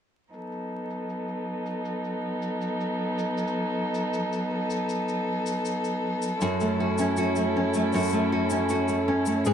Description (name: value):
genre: folktronica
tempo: 79 BPM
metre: 4/4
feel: straight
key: B mixolydian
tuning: A4 = 438 Hz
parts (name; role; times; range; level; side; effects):
- warm string quartet; sustained chords; 0.3-9.5 s; F#3 to A4; -27 LUFS; equal; vintage 12-bit sampler grit, low-pass filter, plate reverb
- cabasa; drums; 0.3-9.5 s; none; -42 LUFS; left 7 dB; overdrive, low-pass filter on perc, low-pass filter on room
- nylon-string guitar; arpeggios; 6.4-9.5 s; F#2 to G#4; -23 LUFS; equal; tape echo, plate reverb
room: wet studio reverb, RT60 0.6 s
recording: dark, warm production, vinyl crackle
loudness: -25 LUFS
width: side -8 dB against mid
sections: 0.3-9.5 A section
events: filter sweep on string quartet 0.3-9.5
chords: 0.3 B7; 6.4 F#m7